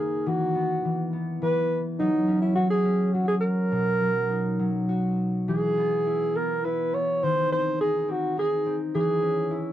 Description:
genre	children's music, lullaby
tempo	104 BPM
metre	3/4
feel	rubato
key	unclear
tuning	A4 = 440 Hz
part	breathy alto saxophone	melody	0.0-9.7 s	D#4 to C#5	-25 LUFS	right 1 dB	none
part	concert harp	accompaniment	0.0-9.7 s	B2 to F#4	-26 LUFS	left 1 dB	none
room	small room ambience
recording	dry, close 1970s-style studio recording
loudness	-22 LUFS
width	side -12 dB against mid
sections	0.0-5.5 A section; 5.5-9.7 B section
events	none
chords	0.3 Esus2; 2.0 F#5; 3.7 Bmaj7; 5.5 E; 7.2 D#5; 8.9 C#m/E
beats	| 0.27 0.85 1.42 | 2.00 2.57 3.14 | 3.72 4.30 4.89 | 5.48 6.06 6.64 | 7.22 7.80 8.37 | 8.94 9.51

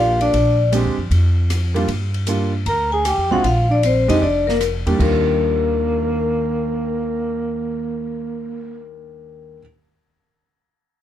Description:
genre	jazz, small-group swing and bop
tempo	154 BPM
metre	4/4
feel	swing 66% on 8ths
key	Eb major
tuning	A4 = 439 Hz
part	vibraphone with medium hard mallets	melody	0.0-9.6 s	Bb4 to Bb5	-21 LUFS	left 5 dB	none
part	breathy tenor saxophone	second line	0.0-8.9 s	Bb3 to Bb4	-23 LUFS	right 4 dB	none
part	warm baby grand piano	accompaniment	0.0-9.6 s	Eb2 to G4	-24 LUFS	right 3 dB	none
part	upright bass	bass	0.0-9.6 s	F1 to G2	-20 LUFS	equal	none
part	open jazz drum kit	drums	0.2-5.1 s	crash cymbal, hi-hat, kick drum, ride cymbal, rim click, snare drum	-30 LUFS	left 1 dB	none
room	little or no reverb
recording	dark, warm production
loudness	-16 LUFS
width	side -11 dB against mid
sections	0.0-5.0 A section; 5.0-8.1 B section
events	none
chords	0.3 Bb13; 1.9 Gm7; 3.4 Bb69; 5.0 Ebmaj9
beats	| 0.33 0.72 1.11 1.50 | 1.88 2.27 2.66 3.05 | 3.44 3.83 4.21 4.60 | 4.99 5.38 5.77 6.16 | 6.54 6.93 7.32 7.71

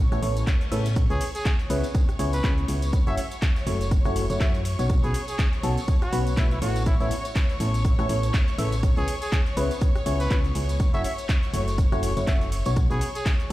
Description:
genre	piano house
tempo	122 BPM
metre	4/4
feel	swing 57% on 16ths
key	C# minor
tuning	A4 = 440 Hz
part	warm symphonic violin section	sustained chords	0.0-13.5 s	C#5 to C#6	-36 LUFS	left 1 dB	sidechain pumping
part	solid FM bass	bass	0.0-13.5 s	F#1 to A2	-26 LUFS	equal	sidechain pumping
part	reverse cymbal	sound effects	0.3-1.0 s	none	-42 LUFS	left 4 dB	none
part	barking FM electric piano	riff	0.1-13.5 s	A2 to E5	-30 LUFS	left 1 dB	phaser, sidechain pumping, tape echo
part	house drum kit	drums	0.1-13.5 s	handclaps, hi-hat, ride cymbal, rim click, shaker	-35 LUFS	equal	studio reverb
part	tambourine	percussion	0.1-13.5 s	none	-45 LUFS	right 2 dB	none
part	electronic kick drum	drums	0.5-13.4 s	none	-22 LUFS	equal	studio reverb
part	clear trumpet	melody	1.1-13.3 s	E4 to E5	-34 LUFS	right 1 dB	tape echo
room	little or no reverb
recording	played on a big sound system in a bare room, large studio reverb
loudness	-21 LUFS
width	side -16 dB against mid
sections	0.0-13.5 A section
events	reverse cymbal 0.3-1.0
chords	0.0 Aadd9; 1.0 C#m7; 2.9 F#m7; 4.9 Bsus2; 6.6 Aadd9; 8.8 C#m7; 10.8 F#m7; 12.8 Bsus2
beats	0.47 | 0.96 1.45 1.95 2.44 | 2.93 3.42 3.91 4.41 | 4.90 5.39 5.88 6.37 | 6.86 7.36 7.85 8.34 | 8.83 9.32 9.81 10.31 | 10.80 11.29 11.78 12.27 | 12.77 13.26

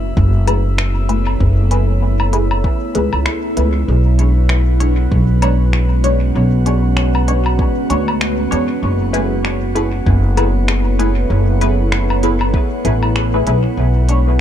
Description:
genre	ambient dub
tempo	97 BPM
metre	4/4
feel	swing 58% on 16ths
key	unclear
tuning	A4 = 440 Hz
part	deep dark ambient pad	sustained chords	0.0-14.4 s	G#3 to C#5	-22 LUFS	right 2 dB	chorus, built-in reverb
part	upright bass	bass	0.0-14.4 s	F#1 to E2	-14 LUFS	equal	none
part	drifting glass-harmonics texture	texture	0.0-14.4 s	B3 to E5	-26 LUFS	left 2 dB	chorus, built-in reverb
part	electronic kick drum	drums	0.2-12.7 s	none	-18 LUFS	equal	none
part	filtered dub chord stab	stabs	0.5-14.3 s	G#3 to C#5	-22 LUFS	left 2 dB	phaser, lush chorus, dub echo
part	organic electronic drum kit	drums	0.5-14.2 s	finger snaps, hi-hat, woodblock	-23 LUFS	left 1 dB	dub echo
room	digital ambience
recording	dark, warm production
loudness	-13 LUFS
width	side -10 dB against mid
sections	0.0-3.9 A section; 3.9-14.4 B section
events	none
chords	0.0 F#m11; 3.9 Bm69; 8.8 F#m11; 13.8 Bm69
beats	0.17 0.79 | 1.41 2.02 2.64 3.26 | 3.88 4.50 5.12 5.74 | 6.35 6.97 7.59 8.21 | 8.83 9.45 10.06 10.68 | 11.30 11.92 12.54 13.16 | 13.78 14.39

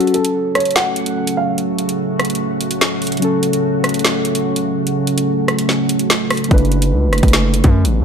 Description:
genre	hip hop, drill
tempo	146 BPM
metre	4/4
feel	half-time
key	F# minor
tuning	A4 = 440 Hz
part	dark upright piano	melody	0.0-1.6 s	F#4 to F#5	-19 LUFS	right 1 dB	low-pass filter, tape echo
part	muted felt-like synth keys	accompaniment	0.0-8.0 s	F#3 to B4	-20 LUFS	left 1 dB	chorus, low-pass filter
part	deep dark ambient pad	sustained chords	0.5-8.0 s	C#3 to A4	-20 LUFS	right 2 dB	chorus, built-in reverb
part	drill drum kit	drums	0.0-7.9 s	hi-hat, kick drum, rim click, snare drum	-17 LUFS	equal	none
part	distorted 808-style bass	bass	6.5-8.0 s	F#1 to F#2	-15 LUFS	equal	distortion
room	little or no reverb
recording	none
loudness	-14 LUFS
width	side -7 dB against mid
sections	0.0-8.0 A section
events	break 0.0-6.5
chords	0.0 F#m; 6.5 Bm7/F#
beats	0.35 0.76 1.17 | 1.58 1.99 2.40 2.81 | 3.22 3.63 4.05 4.46 | 4.87 5.28 5.69 6.10 | 6.51 6.92 7.33 7.74

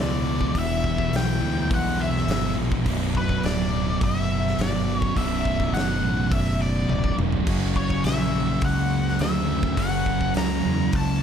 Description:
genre	stoner and doom metal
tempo	104 BPM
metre	4/4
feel	straight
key	B minor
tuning	A4 = 440 Hz
part	octave-fuzz lead guitar	melody	0.0-11.2 s	B4 to A#5	-29 LUFS	left 3 dB	wah, distortion, slapback echo
part	fuzz guitar	riff	0.0-11.2 s	B1 to F#4	-30 LUFS	equal	distortion
part	thick fuzz guitar	riff	0.0-11.2 s	B1 to F#3	-29 LUFS	left 8 dB	distortion
part	thick fuzz guitar	riff	0.0-11.2 s	B1 to F#3	-28 LUFS	right 10 dB	distortion
part	growling fingered electric bass	bass	0.0-11.2 s	B0 to E2	-28 LUFS	equal	overdrive
part	big rock drum kit	drums	0.0-11.1 s	crash cymbal, hi-hat, kick drum, snare drum, toms	-28 LUFS	equal	none
room	light reverb, studio reverb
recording	dark, warm production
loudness	-21 LUFS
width	side -8 dB against mid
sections	0.0-11.2 A section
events	drum fill 6.9-7.5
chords	0.0 Em; 2.9 Bm; 7.5 F#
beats	| 0.54 1.12 1.70 2.27 | 2.85 3.43 4.00 4.58 | 5.16 5.74 6.31 6.89 | 7.47 8.04 8.62 9.20 | 9.78 10.36 10.93

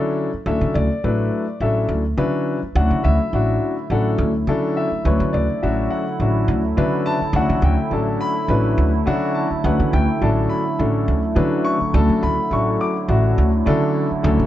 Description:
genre	jazz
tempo	105 BPM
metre	4/4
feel	swing 54% on 16ths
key	D major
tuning	A4 = 440 Hz
part	dark grand piano	accompaniment	0.0-14.5 s	F#3 to D6	-21 LUFS	left 2 dB	none
part	upright bass	bass	0.0-14.5 s	A1 to D3	-19 LUFS	equal	none
part	warm analog pad	sustained chords	2.8-14.5 s	D3 to E4	-25 LUFS	right 3 dB	chorus
room	light reverb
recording	nothing above 7.7 kHz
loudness	-17 LUFS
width	side -13 dB against mid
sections	0.0-14.5 A section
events	none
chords	0.0 Dmaj9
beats	| 0.46 1.04 1.61 2.19 | 2.76 3.33 3.91 4.48 | 5.05 5.63 6.20 6.78 | 7.35 7.92 8.50 9.07 | 9.64 10.22 10.79 11.37 | 11.94 12.51 13.09 13.66 | 14.24

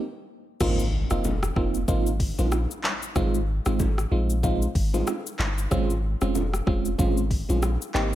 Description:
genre	afrobeats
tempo	94 BPM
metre	4/4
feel	swing 58% on 16ths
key	Ab major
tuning	A4 = 440 Hz
part	FM electric piano with tremolo	accompaniment	0.6-8.2 s	Ab3 to G4	-28 LUFS	right 2 dB	phaser
part	punchy sub bass	bass	0.6-8.2 s	F1 to Bb1	-26 LUFS	equal	none
part	afro-pop drum kit	drums	0.6-8.1 s	crash cymbal, handclaps, hi-hat, kick drum, rim click, shaker	-28 LUFS	equal	none
part	congas and bongos	percussion	0.6-8.1 s	none	-36 LUFS	left 3 dB	none
part	impact	sound effects	0.7-3.2 s	none	-36 LUFS	equal	none
room	digital ambience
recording	none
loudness	-22 LUFS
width	side -13 dB against mid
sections	0.6-8.2 A section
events	break 0.0-0.6; impact 0.6-3.2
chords	0.0 N.C.; 0.6 Ab6; 3.2 Ab69; 5.7 Bbm7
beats	| 0.60 1.24 1.88 2.52 | 3.16 3.80 4.43 5.07 | 5.71 6.35 6.99 7.63

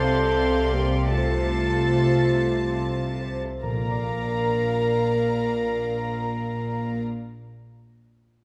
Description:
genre	cinematic, emotional film score for orchestra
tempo	48 BPM (dotted quarters)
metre	6/8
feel	rubato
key	Bb major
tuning	A4 = 440 Hz
part	warm studio violin section	melody	0.0-7.0 s	A5 to C6	-38 LUFS	equal	none
part	clear oboe	second line	0.0-7.0 s	A4 to Bb5	-36 LUFS	equal	none
part	silver concert flute	second line	0.0-7.0 s	F5 to Bb5	-39 LUFS	equal	none
part	warm studio violin section	second line	0.0-7.0 s	C5 to A5	-38 LUFS	equal	none
part	dark symphonic viola section	accompaniment	0.0-7.0 s	A3 to Bb4	-36 LUFS	equal	none
part	mellow French horn section	sustained chords	0.0-7.0 s	F4 to Bb4	-28 LUFS	equal	none
part	concert harp	arpeggios	0.0-7.5 s	Bb2 to C6	-39 LUFS	equal	none
part	warm symphonic cello section	bass	0.0-7.0 s	Bb2 to C3	-31 LUFS	equal	none
part	warm symphonic double bass section	bass	0.0-7.0 s	Bb1 to C2	-31 LUFS	equal	none
part	timpani	percussion	3.6-7.0 s	Bb2	-36 LUFS	equal	none
room	wet scoring stage reverb, RT60 1.6 s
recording	none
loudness	-24 LUFS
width	mono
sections	0.0-3.6 A section; 3.6-8.4 B section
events	slowing down 0.0-3.6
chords	0.0 F/C; 3.6 Bb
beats	| 1.13 2.35 | 3.63 4.89 | 6.15 7.38

